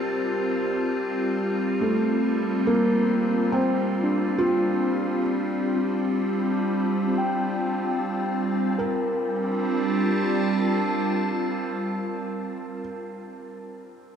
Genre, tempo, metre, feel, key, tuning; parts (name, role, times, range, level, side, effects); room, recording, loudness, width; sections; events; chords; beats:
ambient; 70 BPM; 4/4; straight; G minor; A4 = 440 Hz
evolving wavetable pad; sustained chords; 0.0-13.0 s; G3 to A5; -25 LUFS; equal; chorus, built-in reverb
muted felt-like synth keys; arpeggios; 0.0-14.2 s; C4 to G5; -31 LUFS; left 1 dB; chorus, diffuse ambient delay
analog drone; drone; 0.0-12.8 s; G3 to D5; -32 LUFS; equal; chorus
felt-muted upright piano; melody; 1.8-12.8 s; A3 to Bb4; -27 LUFS; right 1 dB; diffuse ambient delay
wet cathedral reverb, RT60 5.7 s; in a vast, echoing space, cassette tape; -22 LUFS; side -7 dB against mid
0.0-8.8 A section; 8.8-12.2 B section
0.0 Gm7; 1.8 F/G; 8.8 Gm7
0.12 0.97 | 1.83 2.69 3.54 4.40 | 5.26 6.13 7.01 7.90 | 8.79 9.65 10.50 11.36